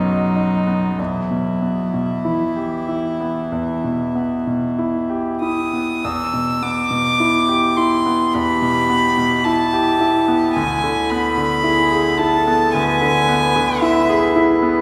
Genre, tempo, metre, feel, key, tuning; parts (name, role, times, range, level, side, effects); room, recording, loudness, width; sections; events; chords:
classical, slow romantic movement for piano trio; 46-56 BPM; 4/4; rubato; A4 = 440 Hz
rich violin; melody; 0.0-14.4 s; D#4 to E6; -22 LUFS; equal
warm cello; second line; 0.0-14.8 s; E3 to B4; -26 LUFS; equal
bright concert grand piano; accompaniment; 0.0-14.8 s; B1 to G#4; -21 LUFS; equal
wet recital hall reverb, RT60 1.5 s; heard from further back in the room; -18 LUFS; mono
0.0-6.0 A section; 6.0-14.8 A section
0.0 B; 1.0 Em; 10.6 E7/D